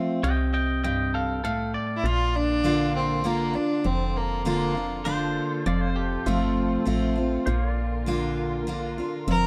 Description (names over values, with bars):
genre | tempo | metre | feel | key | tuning
honky-tonk and classic country | 100 BPM | 3/4 | straight | Bb major | A4 = 440 Hz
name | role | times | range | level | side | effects
picked steel-string acoustic guitar | accompaniment | 0.0-9.5 s | F2 to F4 | -29 LUFS | equal | none
pedal steel guitar | sustained chords | 0.0-9.5 s | C5 to A5 | -41 LUFS | equal | none
twangy electric guitar | second line | 0.2-2.0, 5.1-6.8 s | F4 to G5 | -33 LUFS | equal | analog delay
woody FM bass | bass | 0.2-9.5 s | F1 to C2 | -31 LUFS | equal | none
clear fiddle | melody | 2.0-5.0, 9.3-9.5 s | Bb3 to Bb4 | -28 LUFS | equal | none
muted studio string section | sustained chords | 2.1-9.5 s | C3 to Bb4 | -39 LUFS | equal | none
room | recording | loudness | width
light reverb | dark, warm production | -26 LUFS | mono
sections
0.0-2.0 A section; 2.0-9.5 B section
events
clean electric guitar solo 0.0-2.0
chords
0.0 F; 2.0 Bb; 5.7 F; 7.5 Bb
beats
| 0.24 0.84 1.44 | 2.04 2.65 3.25 | 3.85 4.45 5.06 | 5.66 6.26 6.87 | 7.47 8.07 8.68 | 9.28